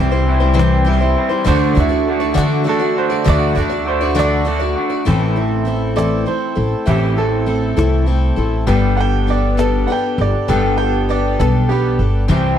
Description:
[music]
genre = folk rock and heartland rock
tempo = 66 BPM (dotted quarters)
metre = 6/8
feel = straight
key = A dorian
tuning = A4 = 439 Hz
[part]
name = picked twelve-string acoustic guitar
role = accompaniment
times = 0.0-12.6 s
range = A2 to D5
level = -19 LUFS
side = left 5 dB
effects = none
[part]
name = hand-pumped harmonium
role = sustained chords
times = 0.0-12.6 s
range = E4 to C6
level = -29 LUFS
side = right 5 dB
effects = none
[part]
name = electric guitar through a small old amp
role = riff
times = 0.0-12.6 s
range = A2 to A4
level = -21 LUFS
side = right 3 dB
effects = lush chorus
[part]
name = upright bass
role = bass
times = 0.0-12.6 s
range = G1 to D3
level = -18 LUFS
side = equal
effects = none
[part]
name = cajon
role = drums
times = 0.3-12.4 s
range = none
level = -22 LUFS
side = right 1 dB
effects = none
[part]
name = bright upright piano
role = second line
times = 1.5-12.6 s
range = B3 to G5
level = -22 LUFS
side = right 7 dB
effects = none
[sound]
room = small room reverb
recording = dry, close 1970s-style studio recording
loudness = -14 LUFS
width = side -9 dB against mid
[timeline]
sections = 0.0-5.1 A section; 5.1-12.6 B section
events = upright piano solo 5.1-12.6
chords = 0.0 C; 1.5 D; 5.1 Am; 8.7 Gadd9

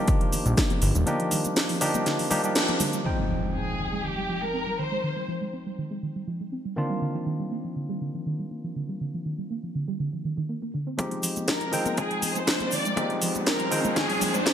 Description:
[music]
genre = nu-disco, nu disco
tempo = 121 BPM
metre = 4/4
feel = straight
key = F dorian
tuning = A4 = 440 Hz
[part]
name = barky tine electric piano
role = accompaniment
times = 0.0-14.5 s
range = Eb3 to G5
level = -30 LUFS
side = equal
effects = low-pass filter, ping-pong delay
[part]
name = soft round pluck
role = arpeggios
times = 0.1-14.5 s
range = D3 to C4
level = -32 LUFS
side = right 2 dB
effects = ensemble chorus, cassette tape, sidechain pumping, ping-pong delay
[part]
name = electronic kick drum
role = drums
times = 0.1-0.7, 11.0-14.5 s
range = none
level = -26 LUFS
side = equal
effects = overdrive, high-pass filter on kick, high-pass filter on room
[part]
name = house drum kit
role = drums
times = 0.1-3.0, 11.0-14.5 s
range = cabasa, hi-hat, snare drum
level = -27 LUFS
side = equal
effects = overdrive, low-pass filter on hats, low-pass filter on perc, low-pass filter on snare, low-pass filter on room, gated reverb
[part]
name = cabasa and congas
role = percussion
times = 0.1-3.0, 11.0-14.5 s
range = none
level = -36 LUFS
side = left 4 dB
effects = none
[part]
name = fat analog bass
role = bass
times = 0.5-1.0 s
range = Eb1 to Bb1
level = -22 LUFS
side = equal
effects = none
[part]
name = impact and riser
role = sound effects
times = 3.1-5.0, 12.2-14.5 s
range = none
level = -33 LUFS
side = equal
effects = none
[part]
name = dark studio violin section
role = melody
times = 3.5-5.3, 11.5-14.5 s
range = G4 to D5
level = -30 LUFS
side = left 1 dB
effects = low-pass filter, ping-pong delay
[sound]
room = moderate plate reverb, RT60 2.1 s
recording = bright 1980s-style digital production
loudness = -24 LUFS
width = side -9 dB against mid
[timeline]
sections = 0.0-3.1 A section; 3.1-11.0 B section; 11.0-14.5 C section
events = kick drops out 1.1-3.1; band accent 2.6; impact 3.1-5.0; filter sweep on tine electric piano 3.1-11.0; build-up 11.0-14.5; filter sweep on violin section 11.0-14.5; filter sweep on synth arpeggio sound 11.0-14.5; riser 12.2-14.5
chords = 0.0 Ebmaj9; 3.1 Fm9; 6.8 Cm11; 11.0 Fm9

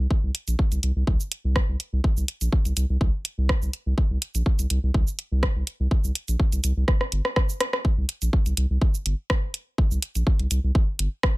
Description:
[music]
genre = minimal techno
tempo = 124 BPM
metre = 4/4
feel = swing 53% on 16ths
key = unclear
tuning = A4 = 440 Hz
[part]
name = saturated sub bass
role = bass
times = 0.0-11.1 s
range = G1 to C2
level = -23 LUFS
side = equal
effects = sidechain pumping
[part]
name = electronic kick drum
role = drums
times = 0.1-11.3 s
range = none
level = -22 LUFS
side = equal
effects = none
[part]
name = house drum kit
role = drums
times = 0.3-11.3 s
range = hi-hat, rim click, shaker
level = -27 LUFS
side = equal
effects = none
[sound]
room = little or no reverb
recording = none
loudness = -22 LUFS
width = side -20 dB against mid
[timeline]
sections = 0.0-7.8 A section; 7.8-11.4 B section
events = drum fill 6.9-7.8; drop 7.8-11.4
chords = none

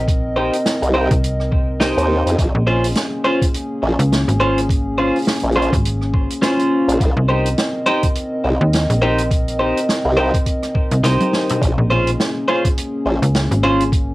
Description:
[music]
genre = glitch hop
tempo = 104 BPM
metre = 4/4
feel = swing 58% on 16ths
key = C phrygian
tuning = A4 = 438 Hz
[part]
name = dark analog pad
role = sustained chords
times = 0.0-14.1 s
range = Bb3 to Eb5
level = -23 LUFS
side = left 1 dB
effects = chorus, sidechain pumping
[part]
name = slap-like FM bass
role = bass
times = 0.0-14.1 s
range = Ab1 to Eb2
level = -18 LUFS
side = equal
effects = none
[part]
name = electronic kick drum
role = drums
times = 0.1-14.1 s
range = none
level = -18 LUFS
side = equal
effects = cassette tape
[part]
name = open jazz drum kit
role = drums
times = 0.1-14.1 s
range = hi-hat, rim click, snare drum, toms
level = -22 LUFS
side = right 1 dB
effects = cassette tape
[part]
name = twelve-string electric guitar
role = stabs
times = 0.4-13.8 s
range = Db4 to C5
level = -18 LUFS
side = equal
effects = sidechain pumping, low-pass filter, tape echo
[part]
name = formant-sweep wobble bass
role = bass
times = 0.8-13.2 s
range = Bb1 to F2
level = -17 LUFS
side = equal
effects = chorus, tube saturation
[sound]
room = moderate small room ambience, RT60 0.5 s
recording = home recording on cassette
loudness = -15 LUFS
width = side -18 dB against mid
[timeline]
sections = 0.0-14.1 A section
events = kick drops out 11.0-11.6; drum fill 11.0-11.6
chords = 0.0 Cm7; 2.4 Bbm7; 7.0 Cm7; 11.6 Bbm7

